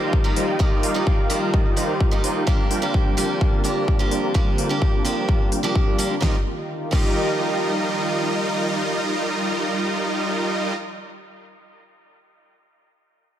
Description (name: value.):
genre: EDM, festival progressive house.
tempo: 128 BPM.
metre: 4/4.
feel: straight.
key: Eb major.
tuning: A4 = 435 Hz.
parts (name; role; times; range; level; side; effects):
picked acoustic archtop guitar; accompaniment; 0.0-11.0 s; F3 to G4; -27 LUFS; right 1 dB; sidechain pumping, dub echo.
lush unison pad; sustained chords; 0.0-10.3 s; D3 to Bb4; -29 LUFS; left 1 dB; chorus, sidechain pumping.
supersaw chords; riff; 0.0-10.7 s; G3 to Bb5; -24 LUFS; right 1 dB; sidechain pumping, low-pass filter, dub echo.
electronic kick drum; drums; 0.1-7.1 s; none; -20 LUFS; equal; studio reverb.
pop drum kit; drums; 0.4-7.1 s; crash cymbal, hi-hat, snare drum; -30 LUFS; left 1 dB; studio reverb.
room: light reverb.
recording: none.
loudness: -19 LUFS.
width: side -11 dB against mid.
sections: 0.0-6.2 A section; 6.2-10.0 B section.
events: filter sweep on supersaw synth 0.0-6.2.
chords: 0.0 Ebadd9; 2.5 Bb6/D; 6.2 Ebadd9.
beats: 0.13 | 0.60 1.07 1.54 2.00 | 2.47 2.94 3.41 3.88 | 4.35 4.82 5.29 5.75 | 6.22 6.69 7.16 7.63 | 8.10 8.57 9.04 9.51.